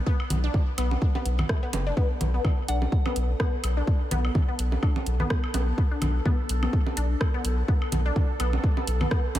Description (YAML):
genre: minimal techno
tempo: 126 BPM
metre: 4/4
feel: swing 56% on 16ths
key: B minor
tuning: A4 = 440 Hz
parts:
  - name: resonant blip pluck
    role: riff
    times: 0.1-9.2 s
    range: A3 to D4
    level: -32 LUFS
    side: left 3 dB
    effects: phaser, sidechain pumping, ping-pong delay
  - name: electronic kick drum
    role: drums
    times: 0.1-9.2 s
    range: none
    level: -23 LUFS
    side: equal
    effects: none
  - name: woodblock, congas and bongos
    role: percussion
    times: 0.2-9.4 s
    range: none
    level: -33 LUFS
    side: right 2 dB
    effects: tape echo
  - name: round analog bass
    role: bass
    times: 0.3-9.4 s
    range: F#1 to B1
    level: -25 LUFS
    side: equal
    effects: tube saturation, sidechain pumping
  - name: house drum kit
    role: drums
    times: 0.3-9.4 s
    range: hi-hat, rim click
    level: -35 LUFS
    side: right 1 dB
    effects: none
  - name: bubbling stepped-filter texture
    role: texture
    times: 2.2-9.4 s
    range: A4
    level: -38 LUFS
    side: right 1 dB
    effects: chorus, built-in reverb, sidechain pumping
  - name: soft synth bell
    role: melody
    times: 2.7-3.2 s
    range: F#5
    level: -39 LUFS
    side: equal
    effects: chorus, tape echo
room: light reverb, digital ambience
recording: none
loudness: -23 LUFS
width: side -13 dB against mid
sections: 0.0-9.4 A section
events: none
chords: 0.0 B7(no3)